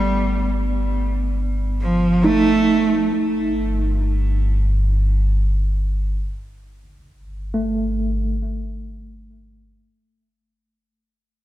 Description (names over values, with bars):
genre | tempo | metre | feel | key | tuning
ambient | free time | none | none | unclear | A4 = 442 Hz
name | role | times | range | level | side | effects
clear cello | melody | 0.0-3.1 s | F3 to A3 | -20 LUFS | right 3 dB | tape echo
mellow tine electric piano | arpeggios | 0.0-10.2 s | A3 to Eb4 | -24 LUFS | left 1 dB | medium tremolo, tape echo
deep rumbling drone | bass | 0.0-10.1 s | G1 | -21 LUFS | equal | built-in reverb
room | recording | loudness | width
moderate concert hall reverb, RT60 2.3 s | dark, warm production | -17 LUFS | side -14 dB against mid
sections
0.0-10.2 A section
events
fade-in on synth drone 0.0-10.2; fade-out 5.5-10.2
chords
0.0 Cmadd9/G (rootless); 3.1 N.C.; 6.7 Gsus2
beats
free time